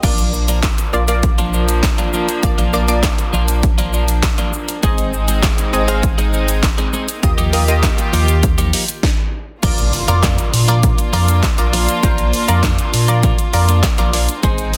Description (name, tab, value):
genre	dance-pop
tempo	100 BPM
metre	4/4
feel	straight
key	unclear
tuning	A4 = 442 Hz
part	punchy chord stab	accompaniment	0.0-14.7 s	Bb3 to F5	-24 LUFS	equal	chorus, sidechain pumping
part	warm studio string section	sustained chords	0.0-14.8 s	Eb3 to G4	-26 LUFS	equal	sidechain pumping
part	twelve-string electric guitar	riff	0.0-14.8 s	F3 to Ab4	-26 LUFS	equal	subtle chorus
part	sub bass with octave	bass	0.0-14.7 s	Ab1 to Bb2	-19 LUFS	equal	sidechain pumping
part	house drum kit	drums	0.0-14.8 s	crash cymbal, handclaps, hi-hat, kick drum, shaker, snare drum	-19 LUFS	equal	soft clipping on snare
part	impact	sound effects	9.8-12.0 s	none	-31 LUFS	equal	none
room	light reverb, digital ambience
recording	dense, heavily limited modern master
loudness	-16 LUFS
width	mono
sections	0.0-9.6 A section; 9.6-14.8 B section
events	stop 9.0-9.6; impact 9.6-12.0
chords	0.0 Bb; 4.8 Ab; 7.2 Ebadd9; 9.6 Bb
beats	| 0.03 0.63 1.23 1.83 | 2.43 3.03 3.63 4.23 | 4.83 5.43 6.03 6.63 | 7.23 7.83 8.43 9.03 | 9.63 10.23 10.83 11.43 | 12.03 12.63 13.23 13.83 | 14.43